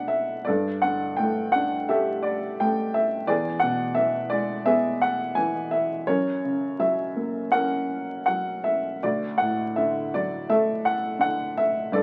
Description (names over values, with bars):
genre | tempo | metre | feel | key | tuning
classical, lyrical solo piano | 84 BPM | 4/4 | uneven beats, rubato | unclear | A4 = 440 Hz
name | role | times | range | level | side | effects
dark grand piano | solo | 0.0-12.0 s | D2 to G#5 | -25 LUFS | equal | none
room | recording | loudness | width
moderate small room reverb, RT60 0.5 s | very old 78 rpm record, vinyl crackle | -25 LUFS | mono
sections
0.0-12.0 A section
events
none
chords
0.5 Gsus2; 3.3 E; 6.1 F#; 9.0 D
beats
| 0.47 1.19 1.90 2.60 | 3.29 3.98 4.66 5.37 | 6.08 6.79 7.52 8.27 | 9.02 9.75 10.48 11.20 | 11.92